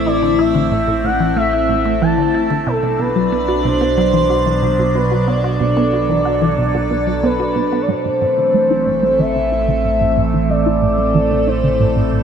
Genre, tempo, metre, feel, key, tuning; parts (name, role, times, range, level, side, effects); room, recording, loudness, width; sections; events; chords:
ambient, sequencer-driven space music; 92 BPM; 4/4; straight; A dorian; A4 = 441 Hz
expressive portamento lead; melody; 0.0-12.1 s; A4 to A5; -18 LUFS; equal; lush chorus, shimmer reverb, ping-pong delay
evolving wavetable pad; sustained chords; 0.0-12.2 s; B2 to D5; -19 LUFS; equal; phaser, built-in reverb, shimmer reverb
analog drone; bass; 0.0-12.2 s; A1 to B1; -23 LUFS; right 1 dB; chorus
resonant blip pluck; riff; 0.1-12.2 s; A2 to F#4; -20 LUFS; right 1 dB; chorus, phaser, shimmer reverb, ping-pong delay
wet plate reverb, RT60 2.9 s; -13 LUFS; side -7 dB against mid
0.0-7.9 A section; 7.9-12.2 B section
filter sweep on synth arpeggio sound 7.9-12.2
0.0 Am; 2.7 Bm; 7.9 Am